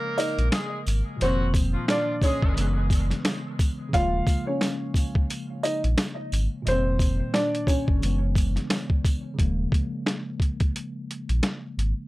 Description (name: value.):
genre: hip hop, boom-bap hip-hop.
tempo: 88 BPM.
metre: 4/4.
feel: swing 57% on 16ths.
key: unclear.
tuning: A4 = 440 Hz.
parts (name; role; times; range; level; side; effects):
mellow tine electric piano; accompaniment; 0.0-12.1 s; Bb2 to Cb4; -32 LUFS; equal; medium stereo tremolo, high-pass filter, low-pass filter.
bright horn section; stabs; 0.0-2.9 s; F3 to Bb4; -33 LUFS; equal; high-pass filter, low-pass filter, tape echo.
dark upright piano; melody; 0.2-8.2 s; C4 to F5; -28 LUFS; equal; high-pass filter, low-pass filter, tape echo.
boom bap sampler-style drum kit; drums; 0.2-12.0 s; hi-hat, kick drum, snare drum; -24 LUFS; equal; none.
sleigh bells; percussion; 0.2-9.2 s; none; -40 LUFS; right 3 dB; none.
sub bass with octave; bass; 0.4-11.9 s; Eb1 to Bb1; -25 LUFS; equal; none.
room: little or no reverb.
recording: dry, gritty hardware recording.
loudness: -22 LUFS.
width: side -19 dB against mid.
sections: 0.0-9.4 A section; 9.4-12.1 B section.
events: none.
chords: 0.0 Eb9sus4; 1.2 F7sus4; 2.6 Gb9sus4; 3.9 Eb9sus4; 6.7 F9sus4; 8.0 Gb9sus4; 9.4 Eb9sus4.